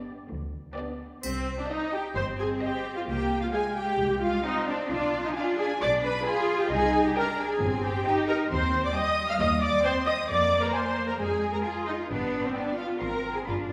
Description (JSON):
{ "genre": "cinematic, playful, whimsical film cue", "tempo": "132 BPM", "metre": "4/4", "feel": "straight", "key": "C minor", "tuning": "A4 = 440 Hz", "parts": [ { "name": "warm studio violin section", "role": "melody", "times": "0.0-13.7 s", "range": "D5 to C6", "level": "-42 LUFS", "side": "equal", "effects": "none" }, { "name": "dark symphonic violin section", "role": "second line", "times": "0.0-13.6 s", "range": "G4 to F6", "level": "-36 LUFS", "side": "equal", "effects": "none" }, { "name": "warm studio viola section", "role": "accompaniment", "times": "0.0-13.7 s", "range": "B3 to F5", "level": "-30 LUFS", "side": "equal", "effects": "none" }, { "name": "rich symphonic cello section", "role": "bass", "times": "0.3-13.7 s", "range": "D2 to F4", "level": "-34 LUFS", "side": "equal", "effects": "none" }, { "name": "warm studio double bass section", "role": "bass", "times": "0.3-13.7 s", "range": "G1 to F2", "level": "-37 LUFS", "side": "equal", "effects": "none" }, { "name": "warm French horn section", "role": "sustained chords", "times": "0.8-0.9 s", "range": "B3 to D4", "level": "-44 LUFS", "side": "equal", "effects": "none" }, { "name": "triangle", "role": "percussion", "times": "1.2-2.1 s", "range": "none", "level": "-44 LUFS", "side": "equal", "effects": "none" } ], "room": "wet scoring stage reverb, RT60 1.7 s", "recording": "heard from further back in the room", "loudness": "-27 LUFS", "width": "mono", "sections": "0.0-1.2 A section; 1.2-13.7 B section", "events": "none", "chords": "0.0 G; 1.2 Cm; 3.1 Bb7sus2/C; 4.9 Bdim7; 6.7 Cm; 8.5 Cm/Eb; 10.3 Fmadd11; 12.1 G; 13.0 Ab", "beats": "0.29 0.76 | 1.24 1.70 2.16 2.62 | 3.07 3.53 3.98 4.44 | 4.90 5.36 5.81 6.26 | 6.71 7.16 7.61 8.06 | 8.51 8.95 9.40 9.85 | 10.29 10.74 11.20 11.65 | 12.10 12.55 13.01 13.46" }